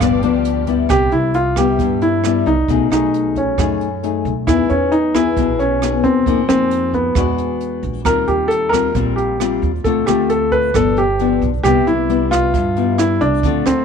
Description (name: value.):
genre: bossa nova.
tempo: 134 BPM.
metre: 4/4.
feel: straight.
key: C major.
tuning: A4 = 440 Hz.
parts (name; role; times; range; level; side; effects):
warm baby grand piano; melody; 0.0-13.8 s; B3 to F5; -17 LUFS; right 1 dB; none.
nylon-string guitar; accompaniment; 0.0-13.8 s; F#2 to G#4; -18 LUFS; left 12 dB; none.
muted studio string section; sustained chords; 0.0-0.9 s; B3 to D5; -30 LUFS; right 1 dB; none.
upright bass; bass; 0.0-13.8 s; G1 to G2; -22 LUFS; right 2 dB; none.
jazz brush drum kit; drums; 0.0-13.8 s; hi-hat, kick drum, rim click; -25 LUFS; right 7 dB; none.
room: light reverb.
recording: 1960s-style stereo with parts hard left and right.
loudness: -14 LUFS.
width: side -6 dB against mid.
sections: 0.9-13.8 A section.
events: none.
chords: 0.0 G7; 0.9 Cmaj7; 2.7 B13; 4.5 Emaj7; 6.3 Fm7; 7.2 E9; 8.1 Eb69; 9.9 Dm7; 10.7 G7; 11.6 Cmaj7.